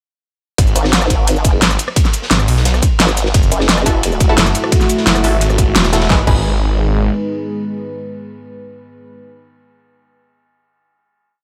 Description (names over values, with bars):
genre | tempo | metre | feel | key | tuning
dark technical drum and bass | 174 BPM | 4/4 | straight | G# phrygian | A4 = 439 Hz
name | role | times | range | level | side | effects
snarling distorted saw bass | bass | 0.6-7.1 s | E1 to B1 | -18 LUFS | equal | distortion, tube saturation, sidechain pumping
crunchy breakbeat drum kit | drums | 0.6-6.1 s | ride cymbal, snare drum | -27 LUFS | equal | high-pass filter on cymbals, high-pass filter on snare, high-pass filter on room
dubstep drum kit | drums | 0.6-6.4 s | cabasa, crash cymbal, hi-hat, rim click, snare drum | -18 LUFS | equal | none
electronic kick drum | drums | 0.6-6.4 s | none | -16 LUFS | equal | none
formant-sweep wobble bass | bass | 0.8-4.4 s | F#1 to G#1 | -18 LUFS | equal | chorus
dark analog pad | sustained chords | 3.8-9.2 s | G#3 to B4 | -23 LUFS | equal | chorus, sidechain pumping
orchestra-hit-like synth stab | stabs | 3.9-9.4 s | D#4 to B4 | -24 LUFS | equal | built-in reverb, delay
room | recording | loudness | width
light reverb, digital ambience | none | -14 LUFS | mono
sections
0.6-6.1 drop; 6.1-8.9 final chord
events
drop 0.6-6.1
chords
0.6 G#m; 3.3 F#m7; 6.1 G#m